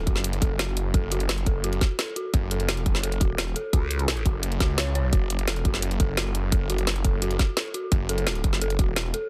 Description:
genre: dark technical drum and bass.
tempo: 172 BPM.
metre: 4/4.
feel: straight.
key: F# minor.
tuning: A4 = 440 Hz.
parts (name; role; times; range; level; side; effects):
dark detuned synth bell; arpeggios; 0.0-9.3 s; F#4 to C#5; -36 LUFS; equal; chorus, sidechain pumping, tape echo.
snarling distorted saw bass; bass; 0.0-9.1 s; E1 to C#2; -29 LUFS; equal; distortion, overdrive.
drum and bass drum kit; drums; 0.1-9.2 s; hi-hat, snare drum; -31 LUFS; equal; none.
electronic kick drum; drums; 0.1-8.9 s; none; -25 LUFS; equal; none.
vowel-sweep wobble bass; bass; 3.7-4.2 s; C#2; -28 LUFS; equal; chorus, tube saturation.
room: little or no reverb.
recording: dense, heavily limited modern master.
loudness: -25 LUFS.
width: mono.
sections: 0.0-9.3 A section.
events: none.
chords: 0.0 F#m.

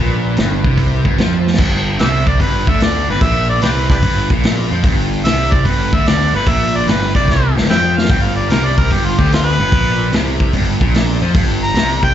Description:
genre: blues rock power trio and southern rock.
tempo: 148 BPM.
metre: 4/4.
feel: swing 68% on 8ths.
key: unclear.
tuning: A4 = 440 Hz.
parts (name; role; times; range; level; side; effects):
mellow harmonica; melody; 0.0-12.1 s; D4 to Bb5; -19 LUFS; right 1 dB; overdrive, slapback echo.
sludgy distorted guitar; riff; 0.0-12.1 s; G2 to F3; -19 LUFS; equal; overdrive.
fuzz picked electric bass; bass; 0.0-12.1 s; G1 to F2; -18 LUFS; equal; overdrive.
vintage drum kit; drums; 0.4-12.1 s; crash cymbal, hi-hat, kick drum, snare drum; -16 LUFS; equal; none.
room: little or no reverb.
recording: live gig heard through the venue's PA, club reverb, nothing above 7.8 kHz.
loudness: -12 LUFS.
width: side -10 dB against mid.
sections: 0.0-1.6 A section; 1.6-12.1 B section.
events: drum fill 1.4, 7.3-8.1; harmonica solo 1.6-12.1.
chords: 0.0 G.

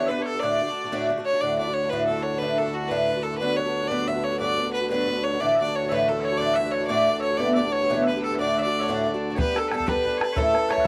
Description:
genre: celtic folk, Celtic jig.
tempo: 120 BPM (dotted quarters).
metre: 6/8.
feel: straight.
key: D major.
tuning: A4 = 441 Hz.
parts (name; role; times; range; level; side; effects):
clear fiddle; melody; 0.0-10.9 s; F#4 to E5; -28 LUFS; equal; none.
loud bright bagpipes; second line; 0.0-1.1, 5.4-10.9 s; A4 to F#5; -36 LUFS; equal; none.
picked twelve-string acoustic guitar; accompaniment; 0.0-10.9 s; D2 to A4; -28 LUFS; equal; none.
hand-pumped harmonium; drone; 1.4-9.4 s; D2 to D3; -33 LUFS; equal; none.
hammered dulcimer; second line; 9.4-10.9 s; A4 to C#5; -31 LUFS; equal; none.
bodhran; percussion; 9.4-10.8 s; none; -30 LUFS; equal; none.
room: light reverb.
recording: dry, close 1970s-style studio recording.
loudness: -24 LUFS.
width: mono.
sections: 0.0-1.4 A section; 1.4-9.4 A section; 9.4-10.9 B section.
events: none.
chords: 0.4 D; 1.4 Dadd9; 3.4 Gmaj7; 5.4 Dadd9; 7.4 Em7; 8.4 D; 9.4 G; 10.4 A.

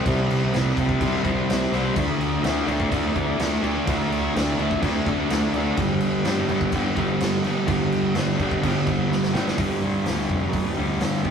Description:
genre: rock, shoegaze and dream pop.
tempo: 126 BPM.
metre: 4/4.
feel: straight.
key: unclear.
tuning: A4 = 441 Hz.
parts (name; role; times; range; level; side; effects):
fuzz guitar; riff; 0.0-11.3 s; G2 to D4; -22 LUFS; equal; distortion.
fuzz fingered electric bass; bass; 0.1-11.3 s; F1 to D2; -30 LUFS; equal; overdrive.
raw garage drum kit; drums; 0.1-11.3 s; crash cymbal, hi-hat, kick drum, snare drum; -27 LUFS; right 1 dB; none.
room: wet studio reverb, RT60 0.6 s.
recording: rough rehearsal-room recording.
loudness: -20 LUFS.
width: side -7 dB against mid.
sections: 0.0-9.6 A section; 9.6-11.3 B section.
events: drum fill 9.1-9.6.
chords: 0.0 C5; 2.0 D5; 5.8 G5.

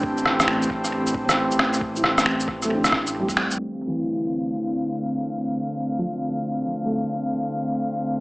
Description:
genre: future garage.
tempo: 135 BPM.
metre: 4/4.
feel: swing 64% on 16ths.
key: D minor.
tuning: A4 = 440 Hz.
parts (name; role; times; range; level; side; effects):
felt-muted upright piano; accompaniment; 0.0-8.2 s; E3 to E4; -29 LUFS; equal; sidechain pumping, tape echo.
airy breathy pad; sustained chords; 0.0-8.2 s; D3 to F5; -25 LUFS; equal; chorus, sidechain pumping.
dark detuned saw bass; bass; 0.0-3.6 s; A1; -36 LUFS; equal; tube saturation, sidechain pumping.
electronic kick drum; drums; 0.0-3.4 s; none; -33 LUFS; equal; none.
electronic shaker, rim click and finger snaps; drums; 0.2-8.2 s; none; -21 LUFS; equal; low-pass filter on perc, low-pass filter on snare, low-pass filter on room, analog delay.
room: wet echo chamber reverb, RT60 1.3 s, digital ambience.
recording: echo-heavy mix, vinyl crackle, low-pass filter, small speaker sound.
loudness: -21 LUFS.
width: side -22 dB against mid.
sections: 0.0-3.6 A section; 3.6-8.2 B section.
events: band accent 3.4; filter sweep 3.6-8.2.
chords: 0.0 Am7; 3.6 Dm7.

